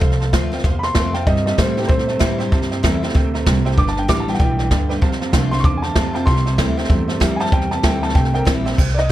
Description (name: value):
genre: rockabilly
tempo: 192 BPM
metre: 4/4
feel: swing 61% on 8ths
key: C major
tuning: A4 = 440 Hz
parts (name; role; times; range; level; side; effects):
- warm upright piano; melody; 0.0-9.1 s; G4 to D6; -24 LUFS; equal; none
- picked steel-string acoustic guitar; accompaniment; 0.0-9.1 s; F2 to G4; -26 LUFS; left 4 dB; none
- tack piano; accompaniment; 0.0-9.1 s; B4 to C6; -31 LUFS; right 7 dB; none
- upright bass; bass; 0.0-9.1 s; G1 to Bb2; -22 LUFS; equal; none
- jazz brush drum kit; drums; 0.0-9.1 s; crash cymbal, hi-hat, kick drum, snare drum; -18 LUFS; equal; none
- electric guitar through a small old amp; riff; 1.3-8.8 s; F2 to A3; -24 LUFS; right 3 dB; none
room: little or no reverb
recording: none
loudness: -15 LUFS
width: side -14 dB against mid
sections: 0.0-8.8 A section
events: none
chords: 0.0 F; 1.3 C; 3.8 G; 5.0 F; 6.3 C